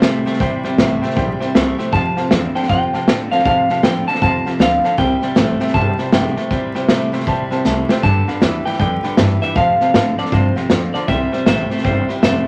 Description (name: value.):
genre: rockabilly.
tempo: 157 BPM.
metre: 4/4.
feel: swing 63% on 8ths.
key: C major.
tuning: A4 = 440 Hz.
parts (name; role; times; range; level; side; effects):
bright upright piano; accompaniment; 0.0-12.4 s; B4 to C6; -28 LUFS; equal; none.
picked steel-string acoustic guitar; accompaniment; 0.0-12.5 s; C3 to C5; -28 LUFS; equal; none.
twangy electric guitar; riff; 0.0-12.4 s; F2 to A3; -25 LUFS; equal; none.
upright bass; bass; 0.0-12.5 s; E1 to C3; -24 LUFS; equal; none.
vintage drum kit; drums; 0.0-12.3 s; hi-hat, kick drum, snare drum; -20 LUFS; equal; none.
electric guitar through a small old amp; melody; 1.9-12.5 s; C5 to A5; -22 LUFS; equal; none.
room: moderate studio ambience, RT60 0.5 s.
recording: vinyl crackle.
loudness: -16 LUFS.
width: mono.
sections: 0.0-12.5 A section.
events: drum fill 7.7-8.0.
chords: 0.0 C; 1.9 F; 5.0 C; 8.0 G; 9.6 F; 11.1 C.